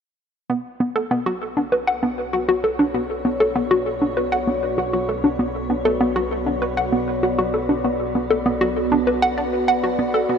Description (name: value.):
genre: ambient.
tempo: 98 BPM.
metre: 4/4.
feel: straight.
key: B minor.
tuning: A4 = 441 Hz.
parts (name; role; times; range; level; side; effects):
evolving wavetable pad; sustained chords; 2.1-10.4 s; B3 to D5; -25 LUFS; equal; chorus, built-in reverb, phaser.
hollow square pluck; riff; 0.5-10.4 s; B3 to F#5; -20 LUFS; equal; chorus, tape echo.
fat analog bass; bass; 0.5-10.4 s; B1; -35 LUFS; equal; none.
wind-like tuned noise texture; texture; 2.0-10.4 s; B3 to E5; -34 LUFS; left 4 dB; built-in reverb.
room: wet huge ambient reverb, RT60 8.1 s.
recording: none.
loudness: -18 LUFS.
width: side -7 dB against mid.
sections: 0.5-10.4 A section.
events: fade-in on ambient pad 0.5-10.4; fade-in on analog synth bass 0.5-10.4; fade-in on synth texture 0.5-10.4.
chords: 0.5 Bm7.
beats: | 0.50 1.11 1.72 2.33 | 2.95 3.56 4.17 4.78 | 5.39 6.01 6.62 7.23 | 7.84 8.46 9.07 9.68 | 10.29.